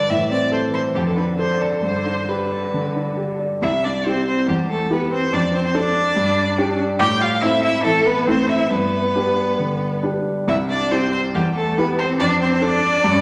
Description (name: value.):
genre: quick classical-period movement for piano trio.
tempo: 131-145 BPM.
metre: 4/4.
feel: rubato.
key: unclear.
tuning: A4 = 440 Hz.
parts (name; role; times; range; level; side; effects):
rich violin; melody; 0.0-13.2 s; G4 to G5; -24 LUFS; equal; none.
dark grand piano; accompaniment; 0.0-13.2 s; C2 to D5; -23 LUFS; equal; none.
rich cello; second line; 0.1-13.2 s; D3 to G4; -25 LUFS; equal; none.
room: wet recital hall reverb, RT60 1.8 s.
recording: none.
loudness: -20 LUFS.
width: mono.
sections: 0.0-3.6 A section; 3.6-13.2 B section.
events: none.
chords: 0.1 Am; 1.0 Dm/F; 1.8 G; 3.6 C; 4.5 Emadd11; 5.3 Dm/F; 6.2 G5; 7.0 Am; 8.7 G; 10.5 C; 11.3 Emadd11; 12.2 Dm/F.